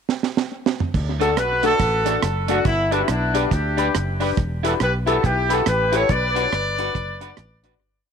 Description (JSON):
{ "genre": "ska", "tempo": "140 BPM", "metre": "4/4", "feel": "swing 62% on 8ths", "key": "D major", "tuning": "A4 = 441 Hz", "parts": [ { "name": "deep reggae drum kit", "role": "drums", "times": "0.1-7.7 s", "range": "crash cymbal, hi-hat, kick drum, rim click, snare drum, toms", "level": "-24 LUFS", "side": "right 5 dB", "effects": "tape echo" }, { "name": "fingered electric bass", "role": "bass", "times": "0.9-7.7 s", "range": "E1 to D2", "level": "-25 LUFS", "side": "equal", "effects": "none" }, { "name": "warm horn section", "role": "melody", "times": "1.2-7.6 s", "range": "B3 to D5", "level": "-21 LUFS", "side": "left 1 dB", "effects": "tape echo" }, { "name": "electric guitar at the edge of break-up", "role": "accompaniment", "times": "1.2-7.7 s", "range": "A3 to B4", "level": "-28 LUFS", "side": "right 13 dB", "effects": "none" }, { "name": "clear upright piano", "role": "stabs", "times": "1.2-7.8 s", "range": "D4 to B4", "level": "-26 LUFS", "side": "left 12 dB", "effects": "tape echo" } ], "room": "light reverb, small room ambience", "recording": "1960s-style stereo with parts hard left and right", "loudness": "-18 LUFS", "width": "side -7 dB against mid", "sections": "0.0-0.9 pickup bar; 0.9-7.8 A section", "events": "drum fill 0.1-0.9; fade-out 6.1-7.8", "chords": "0.0 N.C.; 0.9 D; 2.7 G; 4.4 Em; 6.1 Bm", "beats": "0.08 0.51 | 0.94 1.37 1.80 2.23 | 2.66 3.09 3.52 3.95 | 4.38 4.80 5.23 5.66 | 6.09 6.52 6.95 7.38" }